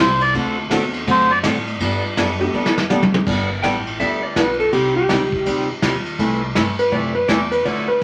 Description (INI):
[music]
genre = country, western swing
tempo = 164 BPM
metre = 4/4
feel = swing 63% on 8ths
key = G major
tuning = A4 = 436 Hz
[part]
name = melodica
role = melody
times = 0.0-1.4 s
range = C5 to D5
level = -18 LUFS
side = equal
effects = none
[part]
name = picked steel-string acoustic guitar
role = accompaniment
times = 0.0-7.9 s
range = C3 to B4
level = -24 LUFS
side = equal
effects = none
[part]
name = upright bass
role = bass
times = 0.0-8.0 s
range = G1 to A2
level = -29 LUFS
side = equal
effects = none
[part]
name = vintage brush drum kit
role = drums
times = 0.2-8.0 s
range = crash cymbal, hi-hat, kick drum, ride cymbal, snare drum, toms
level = -24 LUFS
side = equal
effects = none
[part]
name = honky-tonk upright piano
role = accompaniment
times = 0.7-3.1 s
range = F#3 to G4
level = -27 LUFS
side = equal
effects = none
[part]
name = clean lap steel guitar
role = second line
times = 3.6-8.0 s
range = G4 to G5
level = -22 LUFS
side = equal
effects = none
[sound]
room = wet studio reverb, RT60 0.5 s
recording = vinyl crackle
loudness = -19 LUFS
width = mono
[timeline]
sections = 0.0-3.3 A section; 3.3-8.0 A section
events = melodica solo 0.0-3.3; drum fill 2.5-3.3; electric slide guitar solo 3.3-8.0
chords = 0.3 D7; 1.8 Gadd9; 4.7 Cm; 6.2 Amadd9/C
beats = | 0.35 0.71 1.08 1.44 | 1.81 2.17 2.54 2.90 | 3.27 3.63 4.00 4.36 | 4.73 5.09 5.46 5.83 | 6.19 6.55 6.92 7.29 | 7.65 8.02